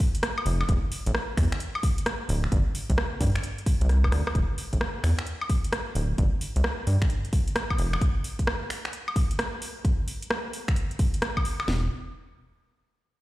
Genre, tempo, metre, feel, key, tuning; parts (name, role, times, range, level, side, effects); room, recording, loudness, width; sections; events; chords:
UK garage, two-step garage; 131 BPM; 4/4; swing 65% on 16ths; A4 = 440 Hz
house drum kit; drums; 0.0-11.8 s; kick drum, snare drum; -25 LUFS; equal
house drum kit; drums; 0.0-11.7 s; finger snaps, hi-hat, rim click, woodblock; -31 LUFS; equal
rubbery square bass; bass; 0.5-8.0, 11.7-11.9 s; D1 to G2; -23 LUFS; equal
light reverb; played on a big sound system in a bare room, stone room reverb; -24 LUFS; side -17 dB against mid
0.0-4.4 A section; 4.4-11.7 B section; 11.7-13.2 C section
drop 0.0-4.4; drum fill 3.9-4.4